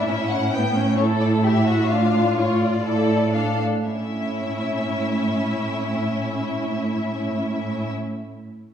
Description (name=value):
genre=quick classical-period movement for symphony orchestra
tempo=116-135 BPM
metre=4/4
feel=straight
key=A major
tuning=A4 = 439 Hz
part: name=rich studio violin section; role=melody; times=0.0-7.9 s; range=C#5 to G5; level=-28 LUFS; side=left 4 dB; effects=none
part: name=warm studio violin section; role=second line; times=0.0-7.9 s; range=E4 to A4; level=-27 LUFS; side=left 3 dB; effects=none
part: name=warm studio viola section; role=accompaniment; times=0.0-7.9 s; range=B3 to F4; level=-27 LUFS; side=equal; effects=none
part: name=warm studio cello section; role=bass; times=0.0-7.9 s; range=A2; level=-23 LUFS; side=right 2 dB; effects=none
room=wet recital hall reverb, RT60 1.6 s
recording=heard from further back in the room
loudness=-20 LUFS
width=side -9 dB against mid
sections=0.0-3.9 A section; 3.9-7.9 B section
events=slowing down 0.0-3.9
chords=0.1 A7; 1.9 Dm/A; 3.9 A